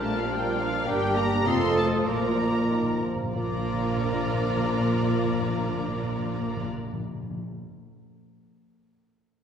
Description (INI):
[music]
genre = quick classical-period movement for symphony orchestra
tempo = 91-107 BPM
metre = 2/4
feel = rubato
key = Bb major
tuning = A4 = 438 Hz
[part]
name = rich studio violin section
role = melody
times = 0.0-6.6 s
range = F5 to C6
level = -34 LUFS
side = left 1 dB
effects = none
[part]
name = clear clarinet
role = second line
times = 0.0-6.6 s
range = D4 to F4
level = -35 LUFS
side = equal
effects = none
[part]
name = mellow cor anglais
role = second line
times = 0.0-6.6 s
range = A4 to Bb4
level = -34 LUFS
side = right 4 dB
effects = none
[part]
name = mellow hollow silver concert flute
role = second line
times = 0.0-6.6 s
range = D6 to F6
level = -35 LUFS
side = left 2 dB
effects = none
[part]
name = rich studio violin section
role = second line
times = 0.0-6.6 s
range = F4 to Eb5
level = -37 LUFS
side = left 3 dB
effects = none
[part]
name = dark bassoon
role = accompaniment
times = 0.0-6.6 s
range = Eb3 to G3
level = -34 LUFS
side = right 1 dB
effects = none
[part]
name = dark studio viola section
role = accompaniment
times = 0.0-6.6 s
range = F3 to F4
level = -35 LUFS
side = right 1 dB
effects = none
[part]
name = mellow French horn section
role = sustained chords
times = 0.0-6.6 s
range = F3 to C4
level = -30 LUFS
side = left 2 dB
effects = none
[part]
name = warm studio cello section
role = bass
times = 0.0-6.6 s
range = Bb2 to Bb4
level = -34 LUFS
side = right 3 dB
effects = none
[part]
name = warm studio double bass section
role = bass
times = 0.0-6.6 s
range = F1 to Bb1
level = -33 LUFS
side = right 3 dB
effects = none
[part]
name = timpani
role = percussion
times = 2.1-7.4 s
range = Bb2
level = -32 LUFS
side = equal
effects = none
[sound]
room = wet scoring stage reverb, RT60 1.6 s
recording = heard from further back in the room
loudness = -24 LUFS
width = side -8 dB against mid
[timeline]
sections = 0.0-3.4 A section; 3.4-5.9 B section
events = slowing down 0.3-3.4; timpani fill 2.1-3.4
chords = 0.0 Bb; 0.9 Gm; 1.5 F7; 2.1 Bb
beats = 0.31 | 0.87 1.46 | 2.08 2.71 | 3.36 3.98 | 4.61 5.25